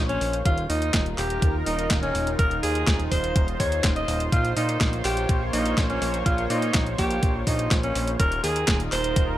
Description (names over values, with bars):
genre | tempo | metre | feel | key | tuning
italo disco | 124 BPM | 4/4 | straight | unclear | A4 = 439 Hz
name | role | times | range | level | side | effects
lush unison pad | sustained chords | 0.0-9.4 s | Eb3 to Db5 | -30 LUFS | right 1 dB | chorus
fat analog bass | bass | 0.0-9.4 s | Eb1 to Bb2 | -28 LUFS | equal | tube saturation
raspy alto saxophone | melody | 0.1-9.3 s | Db4 to Eb5 | -26 LUFS | equal | digital delay
clean 12-bit digital drum machine | drums | 0.1-9.3 s | handclaps, hi-hat, snare drum | -28 LUFS | equal | overdrive
electronic kick drum | drums | 0.5-9.3 s | none | -23 LUFS | equal | overdrive
room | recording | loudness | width
light reverb, digital ambience | none | -21 LUFS | side -13 dB against mid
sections
0.0-9.4 A section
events
none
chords
0.5 Ebsus2; 4.3 Bbmadd9; 8.2 Ebsus2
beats
| 0.45 0.94 1.42 1.91 | 2.39 2.87 3.36 3.84 | 4.32 4.81 5.29 5.78 | 6.26 6.74 7.23 7.71 | 8.20 8.68 9.16